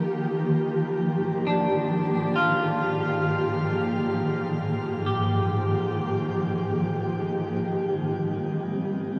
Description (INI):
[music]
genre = ambient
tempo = free time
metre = none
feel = none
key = unclear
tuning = A4 = 440 Hz
[part]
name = granular cloud pad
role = sustained chords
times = 0.0-9.2 s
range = Ab2 to Bb4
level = -27 LUFS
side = equal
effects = built-in reverb
[part]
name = clean electric guitar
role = arpeggios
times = 1.5-6.6 s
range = D4 to G4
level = -32 LUFS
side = equal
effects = lush chorus, tape echo
[sound]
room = wet shimmer reverb, RT60 8.4 s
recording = none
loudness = -26 LUFS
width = mono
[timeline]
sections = 0.0-7.8 A section; 7.8-9.2 B section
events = none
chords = 0.0 Eb; 0.6 Absus2; 7.8 Gsus4